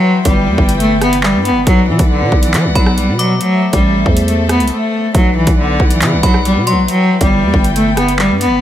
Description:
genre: hip hop, drill.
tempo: 138 BPM.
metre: 4/4.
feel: half-time.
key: unclear.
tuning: A4 = 441 Hz.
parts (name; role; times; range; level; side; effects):
rich cello; melody; 0.0-8.6 s; D3 to B3; -13 LUFS; equal; none.
dark studio string section; sustained chords; 0.0-8.6 s; E3 to G5; -21 LUFS; left 1 dB; none.
growling 808-style bass; bass; 0.3-8.6 s; G1 to F#3; -16 LUFS; equal; none.
drill drum kit; drums; 0.3-8.5 s; handclaps, hi-hat, kick drum, rim click; -15 LUFS; equal; none.
metallic FM bell; second line; 2.8-3.4, 6.2-6.9 s; B5 to D6; -22 LUFS; left 2 dB; chorus, phaser, tape echo.
room: light reverb.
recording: none.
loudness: -10 LUFS.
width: side -11 dB against mid.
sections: 0.0-8.6 A section.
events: break 4.7-5.1.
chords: 0.0 Em; 1.7 Bm; 3.4 Am; 5.1 Bm; 6.9 Em.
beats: 0.36 0.80 1.23 | 1.67 2.10 2.54 2.97 | 3.41 3.84 4.28 4.71 | 5.15 5.58 6.01 6.45 | 6.88 7.32 7.75 8.19.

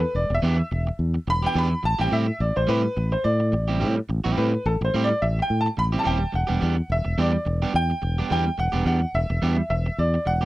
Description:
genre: disco.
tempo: 107 BPM.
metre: 4/4.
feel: swing 56% on 16ths.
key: E minor.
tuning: A4 = 442 Hz.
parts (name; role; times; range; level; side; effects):
clear grand piano; melody; 0.0-10.5 s; A4 to B5; -26 LUFS; equal; none.
electric guitar at the edge of break-up; accompaniment; 0.0-10.5 s; E3 to G4; -27 LUFS; right 4 dB; none.
fingered electric bass; bass; 0.0-10.4 s; D#1 to A2; -23 LUFS; equal; none.
room: little or no reverb.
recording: dry, close 1970s-style studio recording.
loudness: -21 LUFS.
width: side -17 dB against mid.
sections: 0.0-6.3 A section; 6.3-10.5 B section.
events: grand piano solo 0.0-6.3.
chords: 0.0 Em7; 1.8 Am7; 6.3 Em7.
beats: 0.14 0.70 1.27 | 1.83 2.39 2.96 3.52 | 4.08 4.64 5.21 5.77 | 6.33 6.89 7.46 8.02 | 8.58 9.14 9.70 10.27.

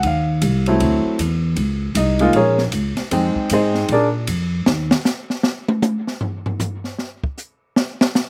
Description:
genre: jazz piano trio.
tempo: 155 BPM.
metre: 4/4.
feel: swing 64% on 8ths.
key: Bb minor.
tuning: A4 = 439 Hz.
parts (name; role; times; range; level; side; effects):
clear concert grand piano; melody; 0.0-4.1 s; Gb3 to G5; -20 LUFS; equal; slapback echo.
upright bass; bass; 0.0-4.9 s; Bb1 to Bb2; -22 LUFS; equal; none.
open jazz drum kit; drums; 0.0-8.3 s; hi-hat, kick drum, ride cymbal, snare drum, toms; -24 LUFS; equal; none.
room: little or no reverb.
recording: recorded outdoors, with no room sound.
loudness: -19 LUFS.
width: mono.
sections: 0.0-8.3 A section.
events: grand piano solo 0.0-8.3; drum solo 4.7-8.3.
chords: 0.0 Ebsus2; 0.8 D9; 1.6 Db5; 3.1 Fm9; 3.9 Bb; 4.7 N.C..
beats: | 0.04 0.43 0.81 1.19 | 1.58 1.96 2.35 2.73 | 3.12 3.50 3.89 4.28 | 4.66 5.05 5.44 5.83 | 6.22 6.61 6.99 7.38 | 7.77 8.16.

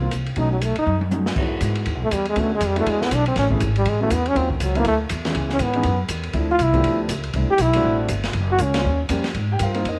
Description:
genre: jazz, small-group swing and bop.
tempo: 241 BPM.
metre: 4/4.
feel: swing 60% on 8ths.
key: unclear.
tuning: A4 = 440 Hz.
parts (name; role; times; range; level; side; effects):
warm upright piano; accompaniment; 0.0-10.0 s; E3 to G5; -29 LUFS; equal; none.
upright bass; bass; 0.0-10.0 s; F#1 to G#2; -25 LUFS; equal; none.
open jazz drum kit; drums; 0.1-9.9 s; crash cymbal, hi-hat, kick drum, ride cymbal, snare drum, toms; -30 LUFS; equal; none.
bright trombone; melody; 0.4-9.0 s; D#3 to G4; -24 LUFS; equal; none.
room: light reverb, small room ambience.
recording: none.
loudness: -21 LUFS.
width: mono.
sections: 0.0-1.4 A section; 1.4-9.3 B section.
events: drum fill 0.9-1.4.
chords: 0.4 B7; 1.4 Emaj7; 2.4 Bm7; 2.9 E9; 3.4 Amaj9; 4.4 D#m7; 4.9 Dsus2; 5.4 C#m7; 6.4 Dm7; 6.8 G9; 7.3 C69; 8.3 F#5; 8.8 D#13; 9.3 Ab69.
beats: 0.13 | 0.38 0.62 0.87 1.12 | 1.37 1.62 1.87 2.12 | 2.37 2.62 2.87 3.11 | 3.36 3.61 3.86 4.11 | 4.36 4.61 4.86 5.11 | 5.36 5.61 5.85 6.10 | 6.35 6.60 6.85 7.10 | 7.35 7.60 7.85 8.10 | 8.35 8.60 8.85 9.10 | 9.35 9.60 9.85.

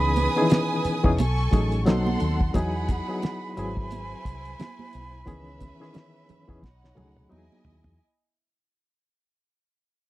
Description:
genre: lush 1970s-style soul.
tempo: 88 BPM.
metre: 4/4.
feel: swing 58% on 16ths.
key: E major.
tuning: A4 = 441 Hz.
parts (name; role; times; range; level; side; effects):
breathy mellow concert flute; melody; 0.0-7.3 s; F#5 to B5; -33 LUFS; right 3 dB; none.
rich studio violin section; second line; 0.0-8.0 s; C#4 to D#6; -32 LUFS; right 1 dB; none.
barky reed electric piano; accompaniment; 0.0-8.0 s; D#3 to B4; -27 LUFS; left 2 dB; fast tremolo.
vintage muted fingered electric bass; bass; 0.0-8.0 s; E1 to E2; -27 LUFS; equal; none.
cloth-damped thuddy drum kit; drums; 0.2-8.0 s; hi-hat, kick drum, snare drum, toms; -23 LUFS; equal; none.
congas; percussion; 0.2-7.8 s; none; -31 LUFS; right 5 dB; none.
room: little or no reverb.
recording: dry, close 1970s-style studio recording.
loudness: -22 LUFS.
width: side -16 dB against mid.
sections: 0.0-8.0 A section.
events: fade-out 0.0-8.0; drum fill 6.6-8.0.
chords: 0.0 C#m7; 1.2 B13; 1.9 B7b9; 2.5 Emaj9; 3.6 G#7alt; 5.3 C#m7; 6.6 B13; 7.3 Emaj7.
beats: 0.50 1.18 1.86 | 2.54 3.22 3.90 4.58 | 5.26 5.95 6.63 7.31.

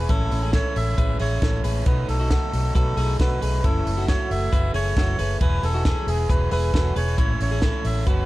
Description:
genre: jangly indie pop.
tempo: 135 BPM.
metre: 4/4.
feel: straight.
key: unclear.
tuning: A4 = 445 Hz.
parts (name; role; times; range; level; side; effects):
melodica; melody; 0.0-8.3 s; G#4 to E5; -29 LUFS; right 1 dB; none.
biting overdriven guitar; accompaniment; 0.0-8.3 s; F#2 to G#4; -31 LUFS; right 6 dB; none.
twelve-string electric guitar; arpeggios; 0.0-8.3 s; B3 to B4; -30 LUFS; left 4 dB; none.
vintage muted fingered electric bass; bass; 0.0-8.3 s; E1 to B1; -24 LUFS; equal; none.
compact cocktail drum kit; drums; 0.1-8.2 s; hi-hat, kick drum, snare drum; -24 LUFS; equal; none.
room: little or no reverb.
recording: dark, warm production.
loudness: -19 LUFS.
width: side -17 dB against mid.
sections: 0.0-8.3 A section.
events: none.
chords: 0.1 Amaj7; 1.9 B7; 3.6 F#m7; 5.4 Eadd9; 7.2 Amaj7.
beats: | 0.09 0.53 0.98 1.42 | 1.86 2.31 2.75 3.19 | 3.64 4.08 4.53 4.97 | 5.41 5.86 6.30 6.74 | 7.18 7.63 8.07.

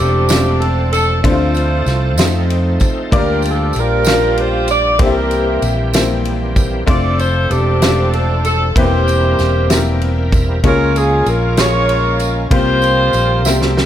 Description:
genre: slow gospel.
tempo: 64 BPM (dotted quarters).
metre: 6/8.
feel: straight.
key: F major.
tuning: A4 = 440 Hz.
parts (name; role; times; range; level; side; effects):
mellow saxophone section; melody; 0.0-13.8 s; C4 to D5; -16 LUFS; equal; slapback echo.
bright upright piano; accompaniment; 0.0-13.9 s; C3 to C6; -20 LUFS; left 4 dB; none.
bright tonewheel organ; sustained chords; 0.0-13.9 s; E3 to E5; -24 LUFS; right 2 dB; overdrive, chorus vibrato, slow rotary speaker.
fingered electric bass; bass; 0.0-13.9 s; E1 to F2; -17 LUFS; equal; none.
natural country drum kit; drums; 0.0-13.9 s; kick drum, ride cymbal, snare drum; -18 LUFS; right 1 dB; none.
tambourine; percussion; 0.3-13.7 s; none; -27 LUFS; right 5 dB; none.
room: light reverb.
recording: none.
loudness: -12 LUFS.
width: side -11 dB against mid.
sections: 0.0-13.9 A section.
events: drum fill 13.5-13.9; tonewheel organ fill 13.5-13.9.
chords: 0.0 F6; 1.2 Dm7; 2.2 F7; 3.1 Bb6; 5.0 C7; 6.9 F6; 8.8 C7/E; 10.6 Db6; 12.5 C7sus4.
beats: 0.31 | 1.25 2.19 | 3.13 4.06 | 5.00 5.94 | 6.88 7.82 | 8.76 9.69 | 10.63 11.57 | 12.51 13.45.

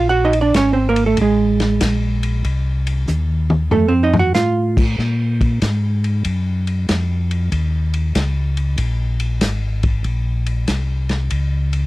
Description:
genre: soul jazz organ trio.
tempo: 95 BPM.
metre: 4/4.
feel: swing 67% on 8ths.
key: Bb minor.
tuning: A4 = 440 Hz.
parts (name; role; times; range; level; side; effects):
hollow-body jazz guitar; accompaniment; 0.0-4.8 s; Ab3 to Gb5; -16 LUFS; right 4 dB; none.
mellow tonewheel organ; bass; 0.0-11.9 s; Ab1 to Bb2; -18 LUFS; left 1 dB; slow rotary speaker.
vintage drum kit; drums; 0.3-11.8 s; crash cymbal, hi-hat, kick drum, ride cymbal, snare drum, toms; -22 LUFS; left 1 dB; none.
room: little or no reverb.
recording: dry, close 1970s-style studio recording.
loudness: -15 LUFS.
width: side -18 dB against mid.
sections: 0.0-5.0 A section; 5.0-11.9 B section.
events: hollow-body jazz guitar solo 0.0-5.0; drum fill 3.1-4.3.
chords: 0.0 Bbm7; 2.5 Cm; 3.7 F7; 5.0 Bb5; 7.5 Eb5; 10.1 Bbm.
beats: 0.55 1.19 1.82 | 2.45 3.08 3.72 4.35 | 4.98 5.62 6.25 6.88 | 7.52 8.15 8.78 9.42 | 10.05 10.69 11.32.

